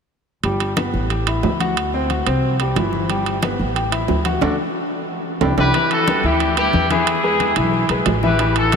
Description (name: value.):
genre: latin, salsa.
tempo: 181 BPM.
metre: 4/4.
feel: straight.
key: G major.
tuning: A4 = 440 Hz.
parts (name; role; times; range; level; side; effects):
clear concert grand piano; accompaniment; 0.4-8.8 s; E3 to G5; -21 LUFS; left 1 dB; none.
upright bass; bass; 0.4-8.8 s; G1 to E2; -22 LUFS; equal; none.
congas; percussion; 0.4-8.8 s; none; -26 LUFS; left 3 dB; none.
timbales; percussion; 0.4-8.8 s; none; -24 LUFS; right 8 dB; none.
bright trumpet section; melody; 5.6-8.8 s; E4 to B4; -19 LUFS; left 2 dB; none.
room: wet huge ambient reverb, RT60 7.7 s.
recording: dreamy mix soaked in reverb.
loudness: -16 LUFS.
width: side -6 dB against mid.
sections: 0.4-5.7 A section; 5.7-8.8 B section.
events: band accent 4.4-5.7.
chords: 0.4 G; 1.1 A5; 1.8 D7; 2.4 C; 3.1 G; 3.8 A5; 4.4 D; 5.1 Cadd9; 5.7 G6; 7.1 E.